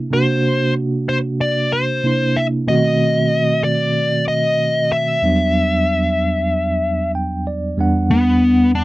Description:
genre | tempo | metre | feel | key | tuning
blues | 94 BPM | 4/4 | swing 55% on 16ths | E minor | A4 = 441 Hz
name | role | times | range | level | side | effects
bright tine electric piano | accompaniment | 0.0-8.8 s | E2 to G5 | -18 LUFS | right 2 dB | medium tremolo
dark smooth lead guitar | melody | 0.1-8.8 s | B3 to E5 | -17 LUFS | left 1 dB | overdrive
room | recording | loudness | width
light reverb | dry, close 1970s-style studio recording | -15 LUFS | side -18 dB against mid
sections
0.0-7.8 A section; 7.8-8.8 A section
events
tine electric piano fill 6.8-7.8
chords
0.0 C7; 2.7 B7b9; 5.2 Em9

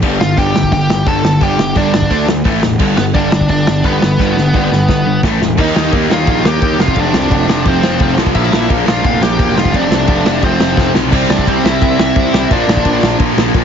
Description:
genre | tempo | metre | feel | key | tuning
punk rock | 173 BPM | 4/4 | straight | unclear | A4 = 442 Hz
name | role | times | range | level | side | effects
cranked stack guitar | riff | 0.0-13.6 s | F2 to Eb4 | -18 LUFS | left 11 dB | overdrive
sludgy distorted guitar | riff | 0.0-13.6 s | F2 to Eb4 | -18 LUFS | right 10 dB | overdrive
fuzz picked electric bass | bass | 0.0-13.6 s | E1 to Eb2 | -19 LUFS | equal | overdrive
loose indie drum kit | drums | 0.0-13.6 s | crash cymbal, hi-hat, kick drum, ride cymbal, snare drum | -15 LUFS | equal | none
biting lead guitar | melody | 0.2-13.2 s | B3 to A5 | -18 LUFS | equal | overdrive
tight distorted guitar | riff | 5.6-13.6 s | F2 to F4 | -20 LUFS | right 1 dB | distortion
room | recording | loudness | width
little or no reverb | heavily compressed radio sound, nothing above 7.5 kHz | -10 LUFS | side -7 dB against mid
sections
0.0-5.6 A section; 5.6-11.1 B section; 11.1-13.6 C section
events
drum fill 4.2-5.6, 10.8-11.1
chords
0.0 G5; 2.1 D5; 2.5 A5; 2.8 G; 5.2 A5; 5.6 Eb; 6.8 F; 8.4 Bb; 9.6 F; 11.1 C; 12.5 Bb

